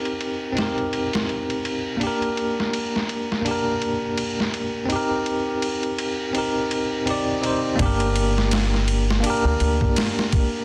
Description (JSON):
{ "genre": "trip hop", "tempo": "83 BPM", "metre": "4/4", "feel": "swing 57% on 16ths", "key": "G minor", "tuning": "A4 = 440 Hz", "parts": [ { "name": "bell-like tine electric piano", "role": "accompaniment", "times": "0.0-10.6 s", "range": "Bb3 to D5", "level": "-26 LUFS", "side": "equal", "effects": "tremolo, tape echo" }, { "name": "boom bap sampler-style drum kit", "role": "drums", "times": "0.1-10.5 s", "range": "kick drum, ride cymbal, snare drum", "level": "-28 LUFS", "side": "equal", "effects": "overdrive, low-pass filter on cymbals, vintage 12-bit sampler grit, low-pass filter on snare, low-pass filter on kick" }, { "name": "upright bass", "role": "bass", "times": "7.8-9.9 s", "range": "G1 to D2", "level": "-24 LUFS", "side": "equal", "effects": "none" } ], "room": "light reverb", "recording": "dense, heavily limited modern master", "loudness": "-23 LUFS", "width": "mono", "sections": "0.0-7.8 A section; 7.8-10.6 B section", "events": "none", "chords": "0.0 Cm7; 2.0 Gm; 4.9 Cm7; 7.8 Gm" }